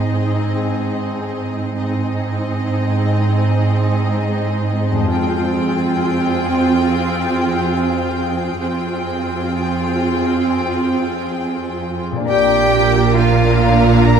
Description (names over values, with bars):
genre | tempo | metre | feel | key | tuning
cinematic, emotional film score for orchestra | free time | none | none | unclear | A4 = 440 Hz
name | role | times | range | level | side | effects
rich symphonic violin section | second line | 0.0-14.2 s | Ab4 to Bb5 | -24 LUFS | left 3 dB | none
clear symphonic viola section | accompaniment | 0.0-14.2 s | Bb3 to F4 | -21 LUFS | right 1 dB | none
concert harp | arpeggios | 0.0-14.2 s | F2 to G5 | -23 LUFS | left 4 dB | none
rich symphonic cello section | bass | 0.0-14.2 s | F2 to Bb2 | -19 LUFS | right 3 dB | none
clear symphonic violin section | melody | 12.3-14.2 s | Bb5 | -27 LUFS | left 3 dB | none
rich cello | melody | 12.3-14.2 s | F4 to Bb4 | -18 LUFS | right 2 dB | none
mellow French horn section | sustained chords | 12.3-14.2 s | Bb3 to D4 | -23 LUFS | left 3 dB | none
rich symphonic double bass section | bass | 12.3-14.2 s | Bb1 | -16 LUFS | right 5 dB | none
room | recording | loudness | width
wet scoring stage reverb, RT60 1.9 s | heard from further back in the room | -15 LUFS | side -7 dB against mid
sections
0.0-12.3 A section; 12.3-14.2 B section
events
none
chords
0.0 Ab; 5.1 Fmadd9; 12.3 Bb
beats
free time